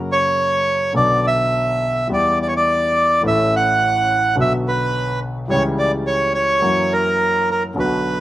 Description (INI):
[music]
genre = tango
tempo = 106 BPM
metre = 4/4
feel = rubato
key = B minor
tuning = A4 = 440 Hz
[part]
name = warm grand piano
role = accompaniment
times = 0.0-8.2 s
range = A1 to A4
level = -21 LUFS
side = left 1 dB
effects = none
[part]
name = bandoneon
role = melody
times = 0.1-8.2 s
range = A#4 to F#5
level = -17 LUFS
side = right 1 dB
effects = none
[sound]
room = light reverb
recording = recorded outdoors, with no room sound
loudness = -15 LUFS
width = side -15 dB against mid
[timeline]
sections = 0.0-8.2 A section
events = none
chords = 0.0 F#; 1.0 Bm; 2.1 Em; 3.2 A; 4.4 Bm; 5.5 C#dim; 6.6 F#7